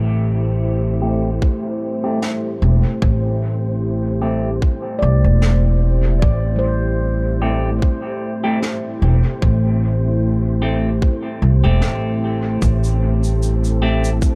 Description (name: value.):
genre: ambient dub.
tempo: 75 BPM.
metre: 4/4.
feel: swing 55% on 16ths.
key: A minor.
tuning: A4 = 440 Hz.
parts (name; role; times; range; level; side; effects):
deep dark ambient pad; sustained chords; 0.0-14.4 s; A3 to E5; -26 LUFS; equal; chorus, built-in reverb.
handpan; arpeggios; 0.0-8.3 s; G3 to D5; -30 LUFS; equal; low-pass filter, tape echo.
upright bass; bass; 0.0-14.2 s; E1 to C2; -19 LUFS; equal; none.
wind-like tuned noise texture; texture; 0.4-14.4 s; C4 to C5; -34 LUFS; equal; built-in reverb.
semi-hollow electric guitar; stabs; 1.0-14.1 s; A3 to G4; -28 LUFS; equal; low-pass filter, dub echo.
electronic kick drum; drums; 1.4-14.4 s; none; -18 LUFS; equal; none.
snare drum and shaker; drums; 2.2-14.4 s; none; -34 LUFS; equal; dub echo.
room: little or no reverb.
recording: dark, warm production.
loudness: -18 LUFS.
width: mono.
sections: 0.0-14.4 A section.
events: filter sweep on clean electric guitar 0.0-14.4; filter sweep on handpan 0.0-14.4.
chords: 0.0 Am7.